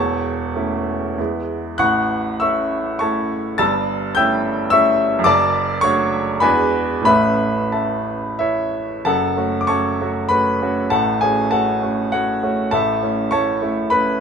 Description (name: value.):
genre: classical, romantic character piece for solo piano.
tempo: 89-110 BPM.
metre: 3/4.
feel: rubato.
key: A major, F# minor from 9.1 s.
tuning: A4 = 440 Hz.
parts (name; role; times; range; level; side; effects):
clear baby grand piano; solo; 0.0-14.2 s; E1 to A6; -16 LUFS; equal; none.
room: light reverb.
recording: minimal, uncompressed stereo recording.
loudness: -16 LUFS.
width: side -6 dB against mid.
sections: 0.0-9.1 A section; 9.1-14.2 B section.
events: none.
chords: 0.0 A/E; 1.2 E; 1.8 A; 3.6 A7/G; 5.3 D/F#; 6.4 E9; 7.1 A; 9.1 F#m; 10.9 F#m/A; 12.7 A.